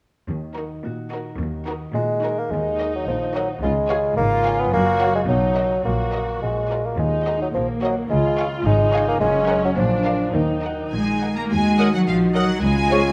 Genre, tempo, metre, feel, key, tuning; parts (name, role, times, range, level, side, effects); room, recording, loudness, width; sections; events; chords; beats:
cinematic, playful, whimsical film cue; 107 BPM; 2/4; straight; Eb minor; A4 = 440 Hz
concert harp; arpeggios; 0.3-13.1 s; Gb2 to Bb5; -32 LUFS; equal
rich studio cello section; bass; 0.3-13.1 s; Db2 to Bb3; -27 LUFS; equal
rich studio violin section; melody; 0.6-13.0 s; Bb4 to Gb5; -33 LUFS; equal
rich studio violin section; second line; 0.6-13.1 s; F4 to Bb5; -31 LUFS; equal
rich studio viola section; accompaniment; 0.6-13.0 s; Bb3 to Eb5; -31 LUFS; equal
warm bassoon; accompaniment; 1.9-13.0 s; Eb3 to Cb4; -24 LUFS; equal
clear studio double bass section; bass; 2.5-13.1 s; Gb1 to Eb2; -29 LUFS; equal
warm French horn section; sustained chords; 11.5-13.1 s; Db4 to Gb4; -27 LUFS; equal
mellow cor anglais; second line; 11.8-13.0 s; Db5 to Eb5; -31 LUFS; equal
warm clarinet; second line; 11.8-13.0 s; Ab4 to Bb4; -32 LUFS; equal
moderate scoring stage reverb, RT60 2.0 s; -21 LUFS; mono
0.3-2.5 A section; 2.5-11.5 B section; 11.5-13.1 B section
0.3 Ebm; 3.6 Db; 4.7 Gb; 5.3 Bmaj7; 5.8 Ebm/Bb; 6.4 Bb; 7.0 Ebm; 8.1 Db; 9.2 Gb; 9.8 Bb; 10.3 Ebm
| 0.27 0.84 | 1.39 1.95 | 2.52 3.08 | 3.63 4.17 | 4.73 5.28 | 5.85 6.42 | 6.99 7.55 | 8.10 8.66 | 9.21 9.77 | 10.35 10.93 | 11.51 12.07 | 12.63